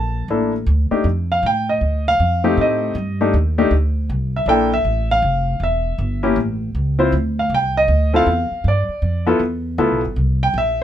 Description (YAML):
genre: jazz piano trio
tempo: 158 BPM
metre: 4/4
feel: swing 63% on 8ths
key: C mixolydian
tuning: A4 = 440 Hz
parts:
  - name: clear grand piano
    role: melody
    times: 0.0-10.8 s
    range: A3 to A5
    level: -18 LUFS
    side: left 1 dB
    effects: none
  - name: upright bass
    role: bass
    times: 0.0-10.8 s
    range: E1 to A2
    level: -19 LUFS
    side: equal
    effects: none
room: light reverb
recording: close, detailed microphones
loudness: -16 LUFS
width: side -10 dB against mid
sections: 0.0-10.8 A section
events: none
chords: 0.0 C13 (rootless); 1.1 F13; 4.1 C13; 5.6 Em; 6.4 A; 7.1 Dm7; 8.7 G13; 10.2 C7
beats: 0.30 0.68 | 1.06 1.44 1.82 2.20 | 2.58 2.96 3.33 3.71 | 4.09 4.47 4.85 5.23 | 5.61 5.99 6.37 6.75 | 7.13 7.51 7.89 8.27 | 8.65 9.03 9.41 9.79 | 10.17 10.55